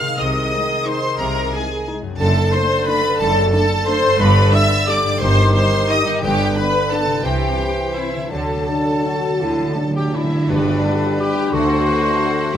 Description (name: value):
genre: classical, orchestral ballroom waltz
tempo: 153-192 BPM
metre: 3/4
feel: rubato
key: G major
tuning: A4 = 445 Hz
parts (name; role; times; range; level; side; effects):
- warm symphonic violin section; melody; 0.0-12.6 s; D5 to F6; -26 LUFS; left 2 dB; none
- flute section; second line; 0.0-12.6 s; Eb5 to F6; -26 LUFS; left 1 dB; none
- mellow clarinet; second line; 0.0-12.6 s; D4 to C5; -25 LUFS; equal; none
- rich symphonic violin section; second line; 0.0-12.6 s; D4 to F5; -26 LUFS; left 2 dB; none
- dark bassoon; accompaniment; 0.0-12.6 s; D3 to A3; -25 LUFS; right 2 dB; none
- warm symphonic viola section; accompaniment; 0.0-12.6 s; Eb4 to F5; -26 LUFS; right 1 dB; none
- concert harp; arpeggios; 0.0-12.6 s; F#2 to A5; -28 LUFS; left 7 dB; none
- rich symphonic cello section; bass; 0.2-11.8 s; D2 to D3; -24 LUFS; right 1 dB; none
- rich symphonic double bass section; bass; 0.2-11.8 s; F#1 to D2; -23 LUFS; right 1 dB; none
- mellow French horn section; sustained chords; 0.5-12.5 s; G3 to F#4; -25 LUFS; left 1 dB; none
- timpani; percussion; 5.2-12.6 s; G2 to D3; -26 LUFS; right 1 dB; none
- cymbal swell and tam-tam; percussion; 8.3-11.8 s; none; -32 LUFS; left 1 dB; none
- warm trumpet section; stabs; 10.5-12.6 s; B4 to C5; -25 LUFS; right 2 dB; none
room: moderate scoring stage reverb, RT60 1.7 s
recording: close, detailed microphones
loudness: -15 LUFS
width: side -9 dB against mid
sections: 0.0-10.5 A section; 10.5-12.6 B section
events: timpani fill 8.3-10.5; band accent 10.5-10.8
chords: 0.2 Ab/C; 2.2 D7/F#; 4.2 G; 5.2 Cm/G; 6.2 G; 7.2 C; 8.3 D; 10.5 G; 11.5 D7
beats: | 0.18 0.52 0.86 | 1.19 1.53 1.87 | 2.20 2.53 2.87 | 3.20 3.53 3.88 | 4.20 4.54 4.89 | 5.22 5.56 5.91 | 6.24 6.57 6.92 | 7.25 7.59 7.95 | 8.32 8.69 9.07 | 9.43 9.78 10.15 | 10.50 10.85 11.21 | 11.54 11.87 12.22 | 12.56